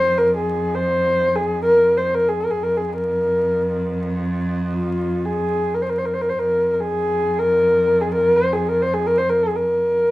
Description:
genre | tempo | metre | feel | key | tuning
mongolian traditional, Mongolian folk | free time | none | none | F yu mode | A4 = 444 Hz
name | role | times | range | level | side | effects
dark horsehead fiddle | melody | 0.0-10.1 s | F4 to C5 | -17 LUFS | left 1 dB | none
clear cello | drone | 0.0-10.1 s | F2 | -25 LUFS | right 1 dB | none
room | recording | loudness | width
wet small room reverb, RT60 0.6 s | rough home demo mix, vinyl crackle | -17 LUFS | side -17 dB against mid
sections
0.0-10.1 A section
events
none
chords
none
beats
free time

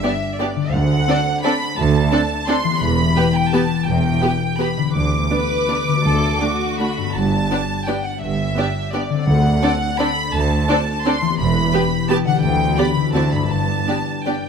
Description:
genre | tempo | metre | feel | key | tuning
classical, orchestral ballroom waltz | 169 BPM | 3/4 | uneven beats, rubato | G major | A4 = 440 Hz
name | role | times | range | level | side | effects
rich studio violin section | melody | 0.0-14.5 s | D5 to D6 | -23 LUFS | equal | none
warm studio violin section | second line | 0.0-14.3 s | F#4 to D5 | -25 LUFS | left 1 dB | none
warm studio viola section | accompaniment | 0.0-14.3 s | A3 to G4 | -24 LUFS | right 2 dB | none
concert harp | arpeggios | 0.0-14.5 s | G2 to D5 | -23 LUFS | left 9 dB | none
warm studio cello section | bass | 0.7-13.8 s | D2 to G2 | -25 LUFS | right 3 dB | none
warm studio double bass section | bass | 0.7-13.8 s | E1 to D2 | -23 LUFS | right 4 dB | none
timpani | percussion | 0.7-1.2, 6.0-6.6, 9.3-9.8 s | D3 | -22 LUFS | equal | none
room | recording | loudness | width
moderate scoring stage reverb, RT60 1.7 s | none | -16 LUFS | side -6 dB against mid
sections
0.0-14.5 A section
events
none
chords
0.0 G; 0.7 D7; 2.8 Em; 4.9 G/D; 7.2 G; 9.3 D7; 11.4 Em; 12.4 G/D; 13.1 D9; 13.5 G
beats
0.04 0.40 | 0.73 1.08 1.44 | 1.78 2.12 2.48 | 2.82 3.17 3.53 | 3.87 4.22 4.59 | 4.95 5.31 5.69 | 6.05 6.41 6.79 | 7.15 7.50 7.87 | 8.21 8.56 8.93 | 9.27 9.62 9.99 | 10.34 10.69 11.05 | 11.39 11.73 12.09 | 12.43 12.78 13.14 | 13.50 13.87 14.26

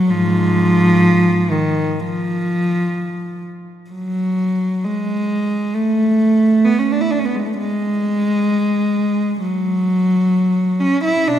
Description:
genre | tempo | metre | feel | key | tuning
classical, free, expressive piece for unaccompanied cello | 64 BPM | 4/4 | uneven beats, rubato | unclear | A4 = 440 Hz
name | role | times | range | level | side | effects
warm cello | solo | 0.0-11.4 s | G#2 to E4 | -15 LUFS | equal | none
room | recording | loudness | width
wet church reverb, RT60 3.0 s | none | -15 LUFS | side -10 dB against mid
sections
0.0-11.4 A section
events
none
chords
none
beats
| 0.08 1.04 1.98 2.94 | 3.89 4.84 5.75 6.63 | 7.55 8.49 9.39 10.32 | 11.26

